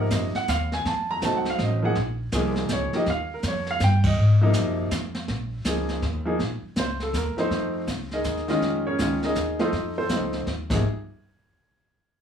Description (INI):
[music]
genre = jazz piano trio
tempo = 162 BPM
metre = 3/4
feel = swing 64% on 8ths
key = unclear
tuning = A4 = 440 Hz
[part]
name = warm baby grand piano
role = melody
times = 0.0-10.8 s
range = C3 to Bb5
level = -25 LUFS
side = equal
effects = none
[part]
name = upright bass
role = bass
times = 0.0-10.8 s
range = Ab1 to Ab2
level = -26 LUFS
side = equal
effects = none
[part]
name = jazz brush drum kit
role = drums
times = 0.1-10.8 s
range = brushed snare drum, crash cymbal, hi-hat, kick drum, snare drum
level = -30 LUFS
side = equal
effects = none
[sound]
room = light reverb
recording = studio ambience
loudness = -22 LUFS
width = side -8 dB against mid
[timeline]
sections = 0.0-6.4 A section; 6.4-10.8 B section; 10.8-11.9 C section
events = band accent 4.0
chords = 0.0 Ab7 (rootless); 0.9 F7b9; 2.0 Bbm7; 3.1 Eb; 4.2 Ab7; 4.9 N.C.; 5.3 Bbm7; 6.0 Eb5; 6.4 Bbm; 7.1 Eb5; 7.5 F7; 8.2 Eb7sus4; 8.6 Bbm7; 9.4 Ebsus4; 9.7 F7; 10.5 N.C.; 10.7 Ab; 10.8 N.C.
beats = 0.11 0.48 | 0.85 1.22 1.59 | 1.96 2.33 2.70 | 3.07 3.44 3.81 | 4.18 4.55 4.92 | 5.29 5.65 6.02 | 6.39 6.76 7.13 | 7.50 7.87 8.24 | 8.61 8.98 9.36 | 9.73 10.10 10.47